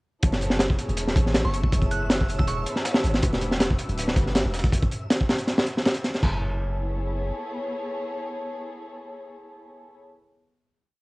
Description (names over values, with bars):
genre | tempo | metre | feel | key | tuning
drum and bass, jungle | 160 BPM | 4/4 | straight | F# minor | A4 = 438 Hz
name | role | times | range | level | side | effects
dark studio string section | sustained chords | 0.2-10.0 s | A3 to C#5 | -33 LUFS | left 1 dB | cassette tape
long sustained 808-style bass | bass | 0.2-7.3 s | D1 to A1 | -27 LUFS | equal | tube saturation
crunchy breakbeat drum kit | drums | 0.2-6.3 s | china cymbal, hi-hat, kick drum, snare drum | -22 LUFS | equal | cassette tape
dusty soul sampler-style drum kit | drums | 0.2-6.2 s | hi-hat, snare drum | -38 LUFS | right 1 dB | none
wind-like tuned noise texture | texture | 0.9-6.2 s | E5 to E6 | -42 LUFS | right 1 dB | built-in reverb, cassette tape
glassy synth bell | melody | 1.4-2.8 s | C#6 to F#6 | -35 LUFS | right 2 dB | chorus, cassette tape, dub echo
room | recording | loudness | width
little or no reverb | home recording on cassette | -22 LUFS | side -23 dB against mid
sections
0.2-6.2 drop; 6.2-9.2 final chord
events
drop 0.2-6.2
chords
0.2 F#m11; 3.2 Em11; 6.2 F#m11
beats
| 0.23 0.60 0.98 1.35 | 1.73 2.10 2.48 2.85 | 3.23 3.60 3.98 4.35 | 4.73 5.10 5.48 5.85 | 6.23 6.60 6.98 7.35 | 7.73 8.10 8.48 8.85